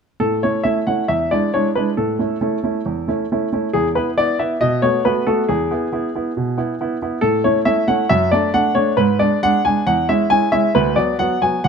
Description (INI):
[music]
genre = classical-period piano sonatina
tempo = 137 BPM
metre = 4/4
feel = rubato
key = A major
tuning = A4 = 438 Hz
[part]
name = clear baby grand piano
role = solo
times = 0.2-11.7 s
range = D2 to G#5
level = -16 LUFS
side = equal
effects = none
[sound]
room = light reverb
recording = close, detailed microphones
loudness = -16 LUFS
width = side -6 dB against mid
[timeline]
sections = 0.2-11.7 A section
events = none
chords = 0.2 A; 1.1 E7; 2.0 A; 3.8 E5; 4.6 B5; 5.5 E; 7.2 A; 8.1 D/F#; 9.0 G#m7b5; 9.9 C#m/E; 10.7 Bm/D